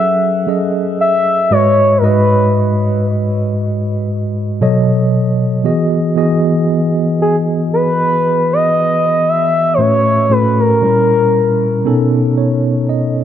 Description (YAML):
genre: R&B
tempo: 58 BPM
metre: 4/4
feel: swing 54% on 16ths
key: E major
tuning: A4 = 440 Hz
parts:
  - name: gliding portamento lead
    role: melody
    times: 0.0-12.1 s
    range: G#4 to E5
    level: -14 LUFS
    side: left 1 dB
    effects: chorus, tape echo
  - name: mellow tine electric piano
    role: accompaniment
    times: 0.0-13.2 s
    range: G#2 to D#5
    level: -14 LUFS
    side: equal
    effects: medium stereo tremolo
room: light reverb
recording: dark, warm production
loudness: -11 LUFS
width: side -10 dB against mid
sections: 0.0-5.7 A section; 5.7-13.2 B section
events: tine electric piano fill 11.9-13.2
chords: 0.0 F#m9; 1.5 G#m7; 4.6 B9; 5.7 Emaj7; 9.8 A6; 10.8 A#dim7; 11.9 B7